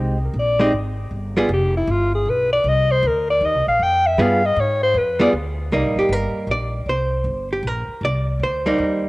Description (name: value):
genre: jazz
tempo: 156 BPM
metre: 4/4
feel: swing 66% on 8ths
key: C minor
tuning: A4 = 438 Hz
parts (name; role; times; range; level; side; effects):
- archtop guitar, miked and amplified; accompaniment; 0.0-1.5, 4.2-9.1 s; G3 to D5; -20 LUFS; right 1 dB; cassette tape
- upright bass; bass; 0.0-9.1 s; F1 to Ab2; -23 LUFS; equal; none
- breathy alto saxophone; melody; 0.2-5.3 s; E4 to G5; -18 LUFS; left 1 dB; none
room: moderate spring reverb, RT60 2.7 s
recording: home recording on cassette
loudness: -17 LUFS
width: side -20 dB against mid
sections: 0.0-5.7 A section; 5.7-9.1 A section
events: alto saxophone solo 0.0-5.7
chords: 0.0 Abmaj7; 1.1 G7; 2.6 Cm; 4.2 G7b9; 5.7 Cm7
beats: 0.34 0.73 | 1.11 1.50 1.88 2.26 | 2.65 3.03 3.41 3.80 | 4.18 4.56 4.95 5.33 | 5.72 6.10 6.48 6.87 | 7.25 7.64 8.02 8.40 | 8.79